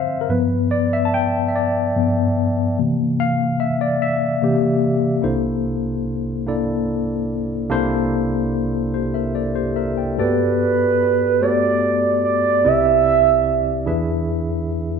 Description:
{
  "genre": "gospel",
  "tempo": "49 BPM (dotted quarters)",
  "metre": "6/8",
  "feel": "straight",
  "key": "G major from 10.2 s",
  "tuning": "A4 = 440 Hz",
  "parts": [
    { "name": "tine electric piano", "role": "accompaniment", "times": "0.0-15.0 s", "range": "C2 to A5", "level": "-18 LUFS", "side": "left 2 dB", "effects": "fast stereo tremolo" },
    { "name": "gliding portamento lead", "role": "melody", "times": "10.2-14.3 s", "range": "B4 to E5", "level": "-16 LUFS", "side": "right 6 dB", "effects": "chorus, phaser, slapback echo" }
  ],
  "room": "wet large studio reverb, RT60 1.4 s",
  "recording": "none",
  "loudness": "-17 LUFS",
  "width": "side -6 dB against mid",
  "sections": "0.0-5.2 A section; 5.2-10.2 B section; 10.2-15.0 C section",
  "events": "tine electric piano solo 0.0-5.2",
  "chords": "0.3 G7; 2.8 C7; 5.2 C13; 10.2 Gmaj9; 12.7 Cmaj9; 13.9 E7"
}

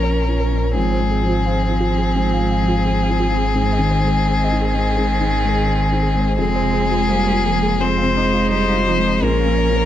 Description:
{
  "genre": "neoclassical piano and strings",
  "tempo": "85 BPM",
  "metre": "4/4",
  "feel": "rubato",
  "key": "unclear",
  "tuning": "A4 = 441 Hz",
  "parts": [
    { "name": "rich violin", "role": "melody", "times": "0.0-9.9 s", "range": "Ab4 to C5", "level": "-21 LUFS", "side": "left 5 dB", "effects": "none" },
    { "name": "rich cello", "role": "second line", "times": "0.0-9.9 s", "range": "Eb3 to Ab3", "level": "-24 LUFS", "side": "right 6 dB", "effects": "none" },
    { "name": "felt-muted upright piano", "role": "accompaniment", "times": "0.0-9.9 s", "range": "F2 to Db5", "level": "-23 LUFS", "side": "left 3 dB", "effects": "none" },
    { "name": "warm viola", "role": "accompaniment", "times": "0.0-9.9 s", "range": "Bb3 to Eb4", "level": "-26 LUFS", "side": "right 5 dB", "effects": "none" },
    { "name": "harp-like synth pluck", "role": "arpeggios", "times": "0.0-9.9 s", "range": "F4 to Bb5", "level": "-27 LUFS", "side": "right 3 dB", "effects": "chorus, tape echo" },
    { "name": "warm sub bass", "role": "bass", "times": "0.0-9.9 s", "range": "F1 to Bb1", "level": "-21 LUFS", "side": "equal", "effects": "none" }
  ],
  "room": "light reverb",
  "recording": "dark, warm production",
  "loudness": "-15 LUFS",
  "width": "side -11 dB against mid",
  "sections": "0.0-9.9 A section",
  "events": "none",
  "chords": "0.0 Bbm; 0.8 Fm/Ab; 3.6 Ab; 6.4 Fm; 9.2 Bbm"
}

